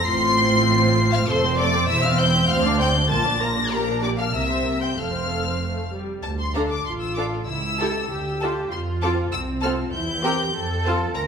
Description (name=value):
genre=quick classical-period movement for string orchestra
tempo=98 BPM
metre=2/4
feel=straight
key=F major, D minor from 6.2 s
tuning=A4 = 438 Hz
part: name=warm studio violin section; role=melody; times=0.0-11.2 s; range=A5 to C7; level=-25 LUFS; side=left 3 dB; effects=none
part: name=clear studio violin section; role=second line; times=0.0-11.0 s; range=A4 to C6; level=-27 LUFS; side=left 3 dB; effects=none
part: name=dark studio viola section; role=accompaniment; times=0.0-11.0 s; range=G3 to E5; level=-26 LUFS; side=equal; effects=none
part: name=dark studio double bass section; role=bass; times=0.0-11.3 s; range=E1 to F2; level=-27 LUFS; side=right 2 dB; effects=none
part: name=warm studio cello section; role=bass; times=0.0-11.3 s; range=D2 to Bb4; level=-26 LUFS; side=right 3 dB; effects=none
room=wet scoring stage reverb, RT60 1.5 s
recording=minimal, uncompressed stereo recording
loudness=-19 LUFS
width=side -6 dB against mid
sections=0.0-6.2 A section; 6.2-11.3 B section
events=none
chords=0.1 F/A; 1.3 F; 1.9 C/E; 2.5 Dm7; 3.1 Bb; 3.7 Gm/Bb; 4.3 C7; 5.0 F; 6.2 Dm; 7.5 A7/C#; 8.1 Dm; 8.7 F; 9.9 C7/E; 10.5 F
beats=| 0.07 0.68 | 1.29 1.89 | 2.50 3.11 | 3.73 4.35 | 4.98 5.61 | 6.24 6.86 | 7.48 8.10 | 8.71 9.33 | 9.94 10.55 | 11.15